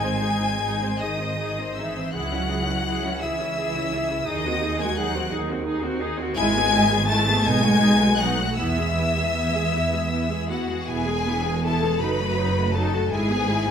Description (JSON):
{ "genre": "classical, slow romantic movement for string orchestra", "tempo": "51-59 BPM (dotted quarters)", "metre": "6/8", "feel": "rubato", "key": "E major from 6.4 s", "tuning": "A4 = 440 Hz", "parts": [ { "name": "clear symphonic violin section", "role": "melody", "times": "0.0-13.7 s", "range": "F#5 to A6", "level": "-28 LUFS", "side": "left 4 dB", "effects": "none" }, { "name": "rich studio violin section", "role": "second line", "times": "0.0-13.7 s", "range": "F#4 to A5", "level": "-26 LUFS", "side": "left 3 dB", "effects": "none" }, { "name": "rich studio viola section", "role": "accompaniment", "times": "0.0-13.7 s", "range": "F#3 to B#4", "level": "-28 LUFS", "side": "equal", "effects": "none" }, { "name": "rich symphonic cello section", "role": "bass", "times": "0.0-13.7 s", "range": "E2 to A3", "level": "-27 LUFS", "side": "right 1 dB", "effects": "none" }, { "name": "rich symphonic double bass section", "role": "bass", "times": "0.0-13.7 s", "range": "E1 to E2", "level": "-28 LUFS", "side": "right 2 dB", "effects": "none" } ], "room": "wet recital hall reverb, RT60 1.3 s", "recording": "none", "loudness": "-20 LUFS", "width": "side -8 dB against mid", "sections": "0.0-10.9 A section; 10.9-13.7 B section", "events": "none", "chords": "0.0 G#; 2.1 C#m; 4.3 G#7/D#; 6.4 E/G#; 7.5 B7; 8.6 E; 12.0 D#dim/F#; 13.1 E/G#" }